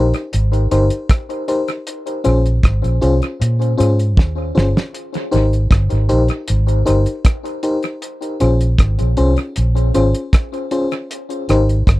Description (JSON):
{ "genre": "lovers rock reggae", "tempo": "78 BPM", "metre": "4/4", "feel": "straight", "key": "Ab major", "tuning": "A4 = 441 Hz", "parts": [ { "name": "FM electric piano with soft pad layer", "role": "accompaniment", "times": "0.0-11.6 s", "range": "Db4 to C5", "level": "-19 LUFS", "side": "left 2 dB", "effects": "chorus, tremolo, tape echo" }, { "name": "vintage muted fingered electric bass", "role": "bass", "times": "0.0-12.0 s", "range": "G1 to Bb2", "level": "-15 LUFS", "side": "equal", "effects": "tube saturation" }, { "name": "cloth-damped thuddy drum kit", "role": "drums", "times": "0.1-12.0 s", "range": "hi-hat, kick drum, rim click, snare drum", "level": "-17 LUFS", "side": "equal", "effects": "tape echo" } ], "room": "little or no reverb", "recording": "dry, close 1970s-style studio recording", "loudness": "-14 LUFS", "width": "side -18 dB against mid", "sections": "0.0-12.0 A section", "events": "drum fill 4.2-4.9", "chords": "0.0 Abmaj7; 1.9 Bbm9; 4.9 Abmaj7; 8.0 Bbm9; 11.1 Abmaj7" }